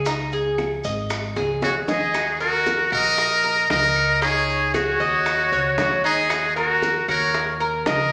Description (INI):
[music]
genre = latin, Cuban son and guajira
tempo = 115 BPM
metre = 4/4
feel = straight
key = Eb minor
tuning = A4 = 440 Hz
[part]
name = Cuban tres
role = arpeggios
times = 0.0-8.1 s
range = Eb4 to Eb5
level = -28 LUFS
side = equal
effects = none
[part]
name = upright bass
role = bass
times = 0.0-8.1 s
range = Ab1 to Eb2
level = -33 LUFS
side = equal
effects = none
[part]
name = bongos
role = percussion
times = 0.1-8.1 s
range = none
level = -32 LUFS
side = equal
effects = none
[part]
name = maracas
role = percussion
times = 0.1-8.1 s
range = none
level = -42 LUFS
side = equal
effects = none
[part]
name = claves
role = percussion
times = 0.6-7.3 s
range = none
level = -39 LUFS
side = equal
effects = none
[part]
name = trumpet with metal mute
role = melody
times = 1.6-8.1 s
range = Gb4 to Bb4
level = -23 LUFS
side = equal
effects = none
[part]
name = breathy bright jazz flute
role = second line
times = 1.6-8.1 s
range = Bb4 to Eb5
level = -28 LUFS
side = equal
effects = none
[sound]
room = wet large studio reverb, RT60 1.2 s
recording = none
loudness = -21 LUFS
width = mono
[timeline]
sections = 0.0-2.1 A section; 2.1-8.1 B section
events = drum fill 1.4-2.1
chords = 0.1 Dbsus2; 2.1 Ebm; 4.2 Dbsus2; 6.3 Ebm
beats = | 0.06 0.58 1.10 1.62 | 2.14 2.66 3.18 3.70 | 4.22 4.74 5.26 5.78 | 6.30 6.82 7.34 7.86